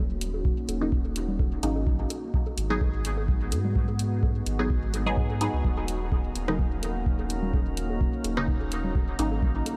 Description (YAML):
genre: dub techno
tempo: 127 BPM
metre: 4/4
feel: swing 54% on 16ths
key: Eb minor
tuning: A4 = 439 Hz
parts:
  - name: deep dark ambient pad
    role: sustained chords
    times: 0.0-9.8 s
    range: Gb3 to Gb4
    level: -37 LUFS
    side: equal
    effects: chorus, built-in reverb, sidechain pumping
  - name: warm sub bass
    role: bass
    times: 0.0-9.6 s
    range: Eb1 to Ab2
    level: -33 LUFS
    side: equal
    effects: sidechain pumping
  - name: deep house drum kit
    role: drums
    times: 0.2-9.8 s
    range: hi-hat, rim click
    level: -39 LUFS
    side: equal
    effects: overdrive, studio reverb, dub echo
  - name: bongos and congas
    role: percussion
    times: 0.3-9.8 s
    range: none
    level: -42 LUFS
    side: equal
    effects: sidechain pumping on perc, studio reverb, dub echo
  - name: electronic kick drum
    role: drums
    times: 0.5-9.5 s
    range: none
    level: -29 LUFS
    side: equal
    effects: studio reverb
  - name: filtered dub chord stab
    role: stabs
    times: 0.8-9.3 s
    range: Db3 to Ab4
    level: -35 LUFS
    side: equal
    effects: chorus, phaser, sidechain pumping, dub echo
  - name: drifting glass-harmonics texture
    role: texture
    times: 6.2-9.8 s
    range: Bb3 to Bb4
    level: -45 LUFS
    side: equal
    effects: chorus, built-in reverb, sidechain pumping
room: light reverb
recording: none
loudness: -27 LUFS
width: mono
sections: 0.0-9.8 A section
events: none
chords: 0.0 Ebm7; 1.9 Abm7; 5.6 Ebm7